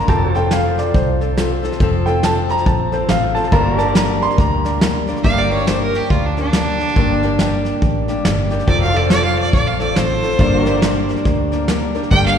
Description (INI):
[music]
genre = honky-tonk and classic country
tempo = 140 BPM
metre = 4/4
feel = swing 61% on 8ths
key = G minor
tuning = A4 = 440 Hz
[part]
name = warm upright piano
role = second line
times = 0.0-4.8 s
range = C5 to C6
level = -21 LUFS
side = right 1 dB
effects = none
[part]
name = picked old ladder-braced acoustic guitar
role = accompaniment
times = 0.0-12.4 s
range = G2 to Bb4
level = -20 LUFS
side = left 3 dB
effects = none
[part]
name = pedal steel guitar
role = sustained chords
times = 0.0-12.4 s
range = F4 to D5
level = -27 LUFS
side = equal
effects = none
[part]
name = vintage muted fingered electric bass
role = bass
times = 0.0-12.4 s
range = F1 to D2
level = -20 LUFS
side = equal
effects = none
[part]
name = soft brush drum kit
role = drums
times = 0.0-12.2 s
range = hi-hat, kick drum, snare drum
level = -19 LUFS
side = equal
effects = none
[part]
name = rich fiddle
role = melody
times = 5.2-12.4 s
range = D4 to G5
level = -20 LUFS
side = right 2 dB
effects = none
[part]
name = clear grand piano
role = accompaniment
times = 12.1-12.4 s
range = G4 to D5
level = -26 LUFS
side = right 1 dB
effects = none
[part]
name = clear studio string section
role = sustained chords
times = 12.1-12.4 s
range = D3 to Bb3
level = -29 LUFS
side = equal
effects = none
[sound]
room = wet church reverb, RT60 2.9 s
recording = recorded in a church or concert hall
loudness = -14 LUFS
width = side -8 dB against mid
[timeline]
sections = 0.0-5.2 A section; 5.2-12.4 A section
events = upright piano solo 0.0-5.2; fiddle solo 5.2-12.4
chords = 0.1 F; 3.5 Gm; 8.7 F; 10.4 Gm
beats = | 0.09 0.52 0.95 1.38 | 1.81 2.24 2.67 3.10 | 3.53 3.96 4.39 4.82 | 5.25 5.68 6.11 6.54 | 6.97 7.40 7.83 8.26 | 8.69 9.12 9.54 9.97 | 10.40 10.83 11.26 11.69 | 12.12